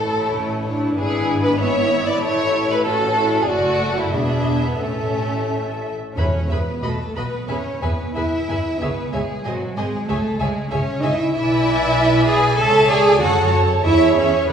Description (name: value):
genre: quick classical-period movement for symphony orchestra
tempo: 87-97 BPM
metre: 2/4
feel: rubato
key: A major, E major from 6.2 s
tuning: A4 = 438 Hz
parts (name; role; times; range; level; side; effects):
- warm chamber violin section; melody; 0.0-14.5 s; F#4 to A5; -26 LUFS; left 1 dB; none
- rich chamber violin section; second line; 0.0-14.5 s; B3 to B5; -23 LUFS; equal; none
- rich chamber viola section; accompaniment; 0.0-14.5 s; A3 to D5; -24 LUFS; equal; none
- dark studio double bass section; bass; 0.0-14.5 s; E1 to F#2; -24 LUFS; right 1 dB; none
- rich studio cello section; bass; 0.0-14.5 s; F#3 to A4; -22 LUFS; right 1 dB; none
- timpani; percussion; 6.2-6.8 s; E2; -24 LUFS; equal; none
room: wet recital hall reverb, RT60 1.8 s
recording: recorded in a church or concert hall, small room ambience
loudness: -17 LUFS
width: side -8 dB against mid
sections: 0.0-6.2 A section; 6.2-14.5 B section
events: none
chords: 0.0 A; 1.0 E7/G#; 2.2 A; 3.5 D/F#; 4.1 E7; 4.8 A; 6.2 E; 6.8 B7; 7.5 E; 8.8 C#7(no3); 9.4 G#7; 10.1 C#m; 11.3 E7/B; 12.6 A/C#; 13.2 F#m; 13.8 C#m/E